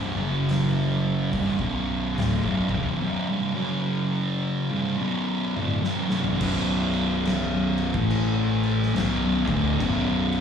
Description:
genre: stoner and doom metal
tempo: 71 BPM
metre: 4/4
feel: swing 61% on 8ths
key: B minor from 6.4 s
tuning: A4 = 440 Hz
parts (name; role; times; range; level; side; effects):
- thick fuzz guitar; riff; 0.0-10.4 s; B1 to A3; -23 LUFS; equal; distortion
- fuzz fingered electric bass; bass; 0.0-10.4 s; B0 to A1; -29 LUFS; left 1 dB; overdrive, tube saturation
- oversized low-tuned drum kit; drums; 0.5-10.4 s; crash cymbal, hi-hat, kick drum, snare drum, toms; -31 LUFS; left 1 dB; none
room: little or no reverb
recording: live gig heard through the venue's PA, club reverb, studio ambience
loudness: -22 LUFS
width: side -7 dB against mid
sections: 0.0-6.4 A section; 6.4-10.4 B section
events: drum fill 5.6-6.4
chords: 0.1 F#5; 1.3 Bm; 3.4 F#5; 4.7 Bm; 6.4 B5; 7.9 A5; 9.0 Bm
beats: 0.49 1.33 2.18 | 3.02 3.87 4.72 5.56 | 6.41 7.26 8.11 8.96 | 9.80

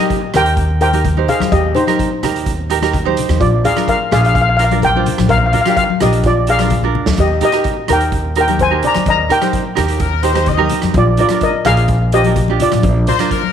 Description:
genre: calypso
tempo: 127 BPM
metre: 4/4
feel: straight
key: Eb major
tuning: A4 = 439 Hz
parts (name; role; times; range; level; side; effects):
- steel pan; melody; 0.0-13.5 s; Eb4 to Bb5; -15 LUFS; left 2 dB; none
- tenor ukulele; accompaniment; 0.0-13.4 s; D4 to C5; -20 LUFS; right 10 dB; none
- street-band drum kit; drums; 0.1-13.4 s; hi-hat, kick drum, rim click, snare drum; -22 LUFS; right 2 dB; none
- upright bass; bass; 0.3-13.1 s; Bb1 to F2; -16 LUFS; equal; none
- congas; percussion; 0.3-13.5 s; none; -22 LUFS; left 10 dB; none
- clear horn section; second line; 9.8-13.5 s; G4 to Eb5; -20 LUFS; left 10 dB; none
room: moderate echo chamber reverb, RT60 1.6 s, small room ambience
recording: 1960s-style stereo with parts hard left and right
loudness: -12 LUFS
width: side -8 dB against mid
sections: 0.0-13.5 A section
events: drum fill 6.9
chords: 0.0 Eb6; 3.4 Bb; 7.2 Eb; 11.0 Bb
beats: 0.10 0.57 1.05 | 1.52 1.99 2.46 2.94 | 3.41 3.88 4.35 4.82 | 5.29 5.77 6.24 6.71 | 7.18 7.65 8.12 8.60 | 9.07 9.54 10.01 10.48 | 10.95 11.42 11.89 12.37 | 12.84 13.31

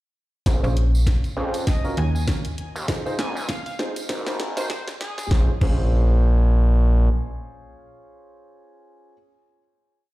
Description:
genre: glitch hop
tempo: 99 BPM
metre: 4/4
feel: swing 57% on 16ths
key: Bb minor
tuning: A4 = 440 Hz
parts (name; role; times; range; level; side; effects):
- dark concert grand piano; stabs; 0.5-9.1 s; Db4 to C5; -32 LUFS; right 1 dB; vintage 12-bit sampler grit, sidechain pumping, low-pass filter, digital delay
- gritty driven synth bass; bass; 0.5-7.1 s; Ab1 to F2; -19 LUFS; equal; overdrive, high-pass filter
- drum and bass drum kit; drums; 0.5-5.8 s; crash cymbal, hi-hat, snare drum; -31 LUFS; equal; studio reverb
- electronic kick drum; drums; 0.5-5.8 s; none; -21 LUFS; equal; studio reverb
- tambourine; percussion; 0.5-5.3 s; none; -40 LUFS; right 3 dB; none
- slap-like FM bass; bass; 0.6-5.3 s; Ab1 to Eb2; -20 LUFS; equal; none
- sync lead; melody; 1.7-5.3 s; Ab4 to Ab5; -36 LUFS; equal; chorus, digital delay
room: little or no reverb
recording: played on a big sound system in a bare room, large studio reverb, high-pass filter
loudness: -19 LUFS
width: side -18 dB against mid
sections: 0.5-5.3 build; 5.3-7.7 final chord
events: build-up 0.5-5.3; drum fill 0.5-5.3; filter sweep on grand piano 0.5-5.3; filter sweep 0.5-5.3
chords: 0.5 Bbm7; 1.7 N.C.; 2.9 Dbmaj7 (rootless); 4.1 Ab7; 5.3 Bbm7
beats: | 0.46 1.07 1.68 2.28 | 2.89 3.49 4.10 4.71 | 5.31 5.92 6.52 7.13

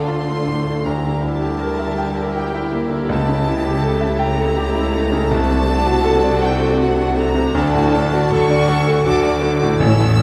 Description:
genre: classical, romantic movement for piano and orchestra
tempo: 80 BPM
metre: 3/4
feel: rubato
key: unclear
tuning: A4 = 441 Hz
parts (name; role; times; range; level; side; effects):
- clear concert grand piano; melody; 0.0-10.2 s; A1 to A5; -21 LUFS; equal; none
- rich chamber violin section; melody; 0.0-10.2 s; F#5 to E6; -28 LUFS; equal; none
- rich chamber violin section; second line; 0.0-10.2 s; F4 to D5; -31 LUFS; equal; none
- rich chamber viola section; accompaniment; 0.0-10.2 s; E3 to F#4; -29 LUFS; equal; none
- rich studio double bass section; bass; 0.0-10.2 s; A1 to D2; -25 LUFS; equal; none
- warm chamber cello section; bass; 0.0-10.2 s; A2 to D3; -26 LUFS; equal; none
- timpani; percussion; 9.8-10.2 s; A2; -21 LUFS; equal; none
room: wet recital hall reverb, RT60 1.6 s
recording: none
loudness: -17 LUFS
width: mono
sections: 0.0-10.2 A section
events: none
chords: 0.0 Dm; 0.9 Em7b5/D; 3.1 A7/C#; 5.3 D7/C; 7.6 D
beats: 0.07 | 0.86 1.61 2.36 | 3.10 3.83 4.57 | 5.32 6.05 6.80 | 7.55 8.32 9.05 | 9.80

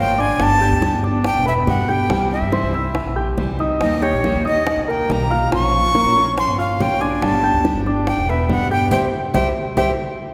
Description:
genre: latin, Cuban son and guajira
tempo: 141 BPM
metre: 4/4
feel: straight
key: unclear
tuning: A4 = 440 Hz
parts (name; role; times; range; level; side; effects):
- breathy bright jazz flute; melody; 0.0-9.9 s; Db5 to Db6; -22 LUFS; equal; none
- fingerpicked steel-string acoustic guitar; accompaniment; 0.0-9.9 s; C3 to C5; -27 LUFS; equal; none
- dark baby grand piano; arpeggios; 0.0-9.9 s; F3 to G6; -25 LUFS; equal; none
- upright bass; bass; 0.0-9.9 s; E1 to G2; -25 LUFS; equal; none
- bongos; percussion; 0.2-9.9 s; none; -28 LUFS; equal; none
room: wet concert hall reverb, RT60 2.3 s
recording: recorded in a church or concert hall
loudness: -18 LUFS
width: mono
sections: 0.0-10.3 A section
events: band accent 8.9-10.3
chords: 0.4 G; 2.1 C; 3.8 Eb; 5.5 Bbm; 7.2 G; 8.9 C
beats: | 0.40 0.82 1.25 1.68 | 2.10 2.53 2.96 3.38 | 3.81 4.23 4.66 5.09 | 5.51 5.94 6.37 6.79 | 7.22 7.64 8.07 8.49 | 8.92 9.35 9.77

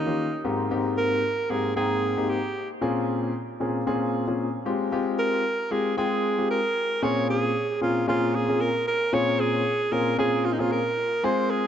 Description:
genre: afrobeats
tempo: 114 BPM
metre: 4/4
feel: swing 55% on 16ths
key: Bb dorian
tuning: A4 = 440 Hz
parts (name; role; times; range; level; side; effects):
- breathy alto saxophone; melody; 0.0-11.7 s; Eb4 to Db5; -25 LUFS; right 2 dB; dub echo
- warm concert grand piano; accompaniment; 0.0-11.7 s; Ab2 to G5; -25 LUFS; left 2 dB; dub echo
room: light reverb, studio reverb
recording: echo-heavy mix, nothing above 7.8 kHz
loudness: -22 LUFS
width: side -9 dB against mid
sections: 0.0-7.0 A section; 7.0-11.7 B section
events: none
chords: 0.4 Abmaj7; 2.8 Bbm7; 4.7 Fmadd9; 7.0 Bbm7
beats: 0.18 | 0.71 1.24 1.76 2.29 | 2.82 3.34 3.87 4.39 | 4.92 5.45 5.97 6.50 | 7.03 7.55 8.08 8.61 | 9.13 9.66 10.19 10.71 | 11.24

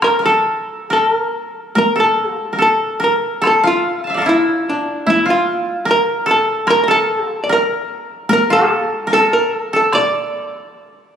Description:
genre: japanese traditional, Japanese chamber music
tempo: 73 BPM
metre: 4/4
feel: uneven beats, rubato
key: unclear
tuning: A4 = 440 Hz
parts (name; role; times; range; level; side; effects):
- archtop guitar, miked and amplified; melody; 0.0-11.2 s; D4 to D5; -15 LUFS; equal; none
- koto; second line; 0.0-11.2 s; E4 to A5; -18 LUFS; right 1 dB; none
- solo taiko drums; percussion; 0.0-10.1 s; none; -23 LUFS; equal; none
room: moderate concert hall reverb, RT60 2.3 s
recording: recorded on a phone in the room, club reverb, compression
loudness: -13 LUFS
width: side -8 dB against mid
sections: 0.0-11.2 A section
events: none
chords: none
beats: | 0.03 0.91 1.76 2.60 | 3.43 4.26 5.07 5.87 | 6.67 7.48 8.29 9.10 | 9.93 10.76

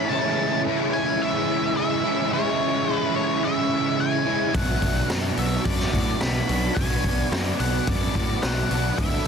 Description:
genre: rock, shoegaze and dream pop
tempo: 108 BPM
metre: 4/4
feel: straight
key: unclear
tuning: A4 = 440 Hz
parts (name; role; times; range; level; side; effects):
- octave-fuzz lead guitar; melody; 0.0-9.3 s; C#5 to C#6; -28 LUFS; left 2 dB; distortion, tape echo
- shimmering ambient pad; sustained chords; 0.0-9.3 s; G#3 to D6; -33 LUFS; equal; chorus, built-in reverb
- crunchy overdriven guitar; riff; 0.0-9.3 s; B2 to F#4; -27 LUFS; left 13 dB; ensemble chorus
- overdriven electric guitar; riff; 0.0-9.3 s; B2 to F#4; -26 LUFS; right 13 dB; reverse reverb
- fuzz picked electric bass; bass; 4.5-9.2 s; B1 to A2; -27 LUFS; equal; overdrive
- raw garage drum kit; drums; 4.5-9.3 s; hi-hat, kick drum, snare drum; -25 LUFS; equal; none
room: little or no reverb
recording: dense, heavily limited modern master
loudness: -21 LUFS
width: side -6 dB against mid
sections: 0.0-9.3 A section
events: none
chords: 0.1 C#m; 4.5 Bmadd9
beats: | 0.10 0.66 1.22 1.77 | 2.33 2.88 3.44 3.99 | 4.54 5.10 5.65 6.21 | 6.76 7.32 7.87 8.42 | 8.98

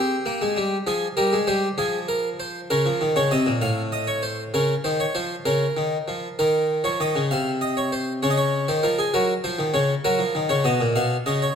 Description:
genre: classical, baroque-style two-part invention for harpsichord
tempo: 65 BPM (dotted quarters)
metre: 6/8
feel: straight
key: Bb minor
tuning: A4 = 439 Hz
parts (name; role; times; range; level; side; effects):
- harpsichord; solo; 0.0-11.6 s; A2 to F5; -20 LUFS; equal; none
room: moderate recital hall reverb, RT60 1.7 s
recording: none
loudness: -20 LUFS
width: side -7 dB against mid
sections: 0.0-6.4 A section; 6.4-11.6 B section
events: none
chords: 0.0 C5; 0.9 Fm; 2.7 Bbm/Db; 3.6 F7/A; 4.5 Bbm/Db; 7.3 Cmadd11; 8.2 Db; 9.1 Gbmaj7; 10.0 Ebm; 11.0 Badd9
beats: | 0.87 1.79 | 2.70 3.62 | 4.54 5.46 | 6.38 7.31 | 8.22 9.13 | 10.04 10.96

